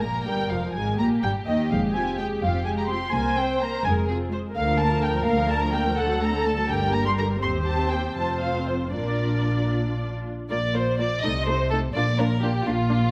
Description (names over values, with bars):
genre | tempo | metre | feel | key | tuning
quick classical-period movement for string orchestra | 83 BPM (dotted quarters) | 6/8 | rubato | Bb major from 4.6 s | A4 = 440 Hz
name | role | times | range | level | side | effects
muted studio violin section | melody | 0.0-13.0 s | F4 to C6 | -31 LUFS | equal | none
muted studio violin section | second line | 0.0-13.1 s | F4 to Eb5 | -32 LUFS | equal | none
muted studio viola section | accompaniment | 0.0-13.0 s | D3 to C5 | -30 LUFS | equal | none
muted studio cello section | bass | 0.0-13.1 s | C2 to C3 | -32 LUFS | equal | none
muted studio double bass section | bass | 0.0-13.1 s | F1 to Eb2 | -31 LUFS | equal | none
room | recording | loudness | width
moderate scoring stage reverb, RT60 1.5 s | none | -24 LUFS | mono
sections
0.0-10.5 A section; 10.5-13.1 B section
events
none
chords
0.3 Bb5; 1.0 Eb; 1.7 Fm; 3.1 Abmaj9/C; 3.9 Fm; 4.6 Bb/D; 6.0 D7; 6.7 Gm; 7.4 Cm/Eb; 8.2 F5; 8.9 Bb; 10.5 Bb5; 11.2 Adim/C; 11.9 Bb